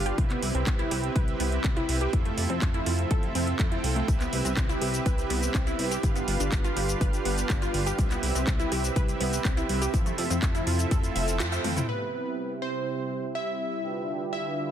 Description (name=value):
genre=progressive house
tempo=123 BPM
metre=4/4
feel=straight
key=C major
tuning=A4 = 440 Hz
part: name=lush unison pad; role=sustained chords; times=0.0-14.7 s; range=C3 to E5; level=-36 LUFS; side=equal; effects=chorus, sidechain pumping
part: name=soft supersaw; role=stabs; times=0.0-14.7 s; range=C4 to G5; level=-33 LUFS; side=right 5 dB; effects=cassette tape, sidechain pumping, low-pass filter, tape echo
part: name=plucky analog bass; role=bass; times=0.0-11.8 s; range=F1 to F2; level=-30 LUFS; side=equal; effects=sidechain pumping
part: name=wide unison pluck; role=arpeggios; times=0.1-11.8 s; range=A3 to E5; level=-33 LUFS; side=equal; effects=sidechain pumping, tape echo
part: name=house drum kit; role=drums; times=0.1-11.9 s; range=cabasa, handclaps, hi-hat, toms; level=-33 LUFS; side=equal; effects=sidechain pumping on hats, sidechain pumping on perc, sidechain pumping on toms
part: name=electronic kick drum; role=drums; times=0.2-11.0 s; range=none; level=-26 LUFS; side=equal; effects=none
part: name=plucky unison lead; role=melody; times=11.9-14.7 s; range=B4 to E5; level=-32 LUFS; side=equal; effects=tape echo
room=light reverb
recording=dense, heavily limited modern master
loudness=-25 LUFS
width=side -10 dB against mid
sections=0.0-11.9 A section; 11.9-14.7 B section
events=kick drops out 11.4-11.9; band accent 11.4; drum fill 11.6; filter sweep on supersaw synth 11.9-14.7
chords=0.2 Cmaj7; 2.1 Fmaj7; 4.1 Cmaj7; 6.0 G7; 8.0 Cmaj7; 9.9 Fmaj7; 11.9 Cmaj7; 13.8 G7